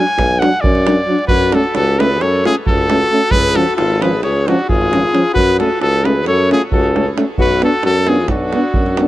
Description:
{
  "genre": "balkan folk, Balkan brass band",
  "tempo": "266 BPM (eighths)",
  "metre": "9/8",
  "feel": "straight",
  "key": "unclear",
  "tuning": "A4 = 440 Hz",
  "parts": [
    { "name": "bright trumpet", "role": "melody", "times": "0.0-9.1 s", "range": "F#4 to G#5", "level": "-17 LUFS", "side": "equal", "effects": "none" },
    { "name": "mellow euphonium", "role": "accompaniment", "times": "0.0-9.1 s", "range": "C#4 to D4", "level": "-20 LUFS", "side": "left 2 dB", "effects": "none" },
    { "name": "mellow trombone", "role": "accompaniment", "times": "0.0-9.1 s", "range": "E#3 to B3", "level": "-23 LUFS", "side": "right 3 dB", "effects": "none" },
    { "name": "davul", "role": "percussion", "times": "0.1-9.1 s", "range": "none", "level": "-20 LUFS", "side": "right 1 dB", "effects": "none" },
    { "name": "clear tuba", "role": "bass", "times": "0.2-9.1 s", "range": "G#1 to F#2", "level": "-18 LUFS", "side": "equal", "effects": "none" },
    { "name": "warm alto saxophone", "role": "second line", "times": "1.3-9.1 s", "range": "D4 to A4", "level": "-20 LUFS", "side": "left 4 dB", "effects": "none" }
  ],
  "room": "light reverb",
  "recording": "worn, warbling old tape, cassette tape, warbly pitch drift",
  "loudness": "-12 LUFS",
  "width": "side -15 dB against mid",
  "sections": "0.0-1.3 A section; 1.3-9.1 B section",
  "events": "trumpet solo 0.0-1.3",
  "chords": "0.0 Bm; 1.3 F#m; 3.3 C#; 5.4 F#m; 7.4 Bm"
}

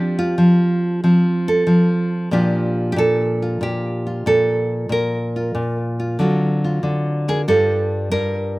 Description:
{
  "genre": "solo jazz",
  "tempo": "93 BPM",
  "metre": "4/4",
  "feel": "swing 69% on 8ths",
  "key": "Bb major",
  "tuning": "A4 = 441 Hz",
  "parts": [
    { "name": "nylon-string guitar", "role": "solo", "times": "0.0-8.6 s", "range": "G2 to Bb4", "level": "-16 LUFS", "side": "equal", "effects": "slapback echo" }
  ],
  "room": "light reverb",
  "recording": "recorded outdoors, with no room sound",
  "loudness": "-16 LUFS",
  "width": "side -20 dB against mid",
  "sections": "0.0-7.5 A section; 7.5-8.6 B section",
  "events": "none",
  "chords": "0.0 Fadd9; 2.3 Bbmaj7; 6.2 D7alt; 7.5 Gm9"
}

